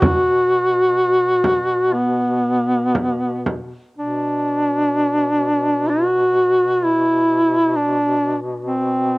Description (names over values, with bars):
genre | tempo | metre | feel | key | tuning
caucasian folk, Caucasian lament | 58-68 BPM | 4/4 | rubato | B phrygian | A4 = 439 Hz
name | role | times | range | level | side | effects
warm duduk | melody | 0.0-9.2 s | B3 to F#4 | -16 LUFS | equal | cassette tape
mellow duduk | drone | 0.0-9.2 s | B2 | -26 LUFS | left 1 dB | stereo widening, cassette tape
frame drum | percussion | 0.0-3.7 s | none | -19 LUFS | right 1 dB | none
room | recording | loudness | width
light reverb, small room ambience | home recording on cassette | -15 LUFS | side -24 dB against mid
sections
0.0-4.0 A section; 4.0-9.2 B section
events
none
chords
none